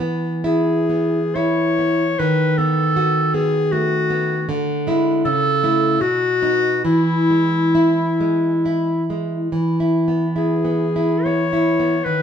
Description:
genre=romantic duo for clarinet and classical guitar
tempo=63-80 BPM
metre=3/4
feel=rubato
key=E major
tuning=A4 = 440 Hz
part: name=nylon-string guitar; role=accompaniment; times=0.0-12.2 s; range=B2 to F#4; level=-18 LUFS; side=right 1 dB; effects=none
part: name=bright clarinet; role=melody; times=0.4-12.2 s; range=E4 to C#5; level=-19 LUFS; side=left 2 dB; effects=none
room=moderate stone room reverb, RT60 0.9 s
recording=band playing live in one room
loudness=-16 LUFS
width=side -8 dB against mid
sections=0.0-9.5 A section; 9.5-12.2 A section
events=none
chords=0.0 E; 2.2 B7/D#; 4.5 E7/D; 5.3 A/C#; 6.0 B; 6.9 E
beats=0.45 1.36 | 2.19 2.97 3.73 | 4.50 5.26 6.02 | 6.86 7.75 8.65 | 9.52 10.35 11.25 | 12.04

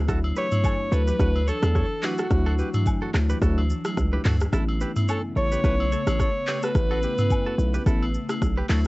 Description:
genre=afrobeats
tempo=108 BPM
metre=4/4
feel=swing 55% on 16ths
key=A mixolydian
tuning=A4 = 440 Hz
part: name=mellow tine electric piano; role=accompaniment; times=0.0-8.9 s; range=F#3 to E4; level=-31 LUFS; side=left 2 dB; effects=cassette tape
part: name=ethereal airy pad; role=sustained chords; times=0.0-8.9 s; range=C#3 to D4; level=-34 LUFS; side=equal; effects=ensemble chorus, built-in reverb, cassette tape
part: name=hard-hitting 808-style bass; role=bass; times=0.0-8.9 s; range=A1 to E2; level=-23 LUFS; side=equal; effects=none
part: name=direct-recorded clean electric guitar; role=riff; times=0.1-8.8 s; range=E4 to C#5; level=-35 LUFS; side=right 3 dB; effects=cassette tape, analog delay
part: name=afro-pop drum kit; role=drums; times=0.1-8.9 s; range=handclaps, hi-hat, kick drum, rim click, shaker, toms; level=-25 LUFS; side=equal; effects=none
part: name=agogo bells and woodblock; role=percussion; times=0.2-8.8 s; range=none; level=-37 LUFS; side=left 2 dB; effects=none
part: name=breathy alto saxophone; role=melody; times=0.4-8.3 s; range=F#4 to C#5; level=-28 LUFS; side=equal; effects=cassette tape
room=little or no reverb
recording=home recording on cassette, nothing above 8.0 kHz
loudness=-21 LUFS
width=side -21 dB against mid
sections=0.0-8.9 A section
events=kick muted 4.5-5.6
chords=0.0 Dadd9; 4.5 Aadd9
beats=| 0.08 0.64 1.19 1.75 | 2.31 2.86 3.42 3.97 | 4.53 5.08 5.64 6.19 | 6.75 7.30 7.86 8.42

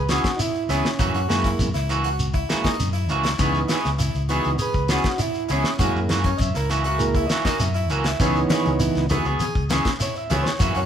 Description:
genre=afrobeat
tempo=100 BPM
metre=4/4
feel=straight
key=C# dorian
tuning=A4 = 440 Hz
part: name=combo organ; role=accompaniment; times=0.0-10.9 s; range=E3 to E5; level=-26 LUFS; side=right 3 dB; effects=none
part: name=fingered electric bass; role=bass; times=0.0-10.9 s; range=C#2 to F#2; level=-25 LUFS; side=left 1 dB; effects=none
part: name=harpsichord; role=arpeggios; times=0.1-10.9 s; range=C#4 to G#4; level=-29 LUFS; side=left 3 dB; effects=none
part: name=electric guitar at the edge of break-up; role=stabs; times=0.1-10.8 s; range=E3 to G#4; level=-26 LUFS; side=right 2 dB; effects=none
part: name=damped 70s drum kit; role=drums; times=0.1-10.7 s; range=hi-hat, kick drum, snare drum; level=-25 LUFS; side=left 1 dB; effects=none
part: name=shekere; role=percussion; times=0.1-10.9 s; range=none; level=-30 LUFS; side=right 1 dB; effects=none
part: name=congas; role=percussion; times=8.5-10.5 s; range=none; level=-27 LUFS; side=left 2 dB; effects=none
room=moderate stone room reverb, RT60 1.4 s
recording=band playing live in one room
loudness=-19 LUFS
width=side -9 dB against mid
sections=0.0-10.9 A section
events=transistor combo organ solo 0.0-10.9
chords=0.0 C#m7; 1.0 F#7; 3.4 C#m7; 5.8 F#7; 8.2 C#m7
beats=0.39 | 0.99 1.59 2.19 2.79 | 3.40 4.00 4.60 5.20 | 5.80 6.40 7.00 7.60 | 8.21 8.81 9.41 10.01 | 10.61

